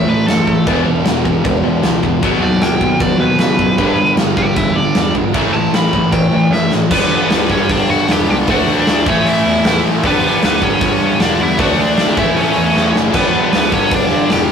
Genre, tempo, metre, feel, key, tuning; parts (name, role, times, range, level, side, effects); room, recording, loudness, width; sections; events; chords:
punk rock; 154 BPM; 4/4; straight; A4 = 442 Hz
biting overdriven guitar; melody; 0.0-14.5 s; B3 to B5; -18 LUFS; equal
distorted electric guitar; riff; 0.0-14.5 s; G2 to E4; -20 LUFS; left 7 dB; overdrive
distorted electric guitar; riff; 0.0-14.5 s; E2 to D4; -20 LUFS; right 2 dB; distortion
fuzz guitar; riff; 0.0-14.5 s; E2 to D4; -18 LUFS; right 1 dB; distortion
overdriven picked electric bass; bass; 0.0-14.5 s; E1 to C#3; -22 LUFS; equal
big rock drum kit; drums; 0.3-14.4 s; crash cymbal, hi-hat, kick drum, snare drum; -17 LUFS; equal
moderate studio reverb, RT60 0.6 s; rough rehearsal-room recording, warm saturation; -11 LUFS; side -7 dB against mid
0.0-6.9 A section; 6.9-14.5 B section
overdriven electric guitar solo 0.0-6.9; drum fill 6.5-6.9, 12.8-13.1
0.0 A5; 0.7 E; 2.2 B/D#; 3.8 G; 5.3 A5; 6.9 G; 8.5 D; 9.1 A; 10.0 G; 11.6 D; 12.2 A; 13.1 G